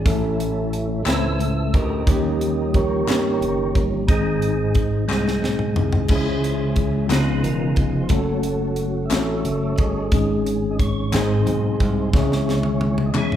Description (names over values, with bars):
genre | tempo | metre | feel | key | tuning
slow gospel | 60 BPM (dotted quarters) | 6/8 | straight | C# harmonic minor | A4 = 440 Hz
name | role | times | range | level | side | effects
mellow tine electric piano | accompaniment | 0.0-13.4 s | G#2 to B#4 | -23 LUFS | left 1 dB | medium stereo tremolo
percussive tonewheel organ | sustained chords | 0.0-13.4 s | D#3 to E5 | -26 LUFS | right 2 dB | fast rotary speaker, chorus vibrato
slap bass | bass | 0.0-13.4 s | E1 to G2 | -25 LUFS | equal | none
tight funk drum kit | drums | 0.1-13.4 s | crash cymbal, hi-hat, kick drum, snare drum, toms | -22 LUFS | equal | none
group handclap | percussion | 1.1-13.4 s | none | -31 LUFS | left 6 dB | none
room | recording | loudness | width
moderate large studio reverb, RT60 1.2 s | band playing live in one room | -18 LUFS | side -10 dB against mid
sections
0.0-13.4 A section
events
tonewheel organ solo 0.0-13.4; drum fill 5.1-6.1, 12.1-13.4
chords
0.1 A; 2.1 D#7; 4.1 G#; 6.1 C#m; 7.1 C#7; 8.1 F#m; 10.1 G#sus4; 11.1 G#; 12.1 C#m